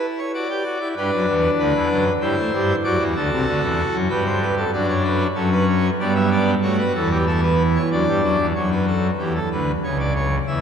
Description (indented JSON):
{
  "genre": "classical, baroque-style 3-part fugue for pipe organ",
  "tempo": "95 BPM",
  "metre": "3/4",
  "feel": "straight",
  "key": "G major",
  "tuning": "A4 = 439 Hz",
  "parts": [
    { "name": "pipe organ, full organ", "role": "solo", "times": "0.0-10.6 s", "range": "C2 to E5", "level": "-18 LUFS", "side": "equal", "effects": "none" }
  ],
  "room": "wet cathedral reverb, RT60 4.4 s",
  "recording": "none",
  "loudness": "-18 LUFS",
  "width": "side -7 dB against mid",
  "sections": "0.0-8.6 A section; 8.6-10.6 B section",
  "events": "none",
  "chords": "0.3 D/F#; 1.0 G; 2.2 Am7/G; 2.8 D7; 4.1 G; 4.7 D/F#; 6.0 Em7/G; 6.6 A7; 7.9 D/F#; 8.6 Gmaj7/F#; 9.8 N.C."
}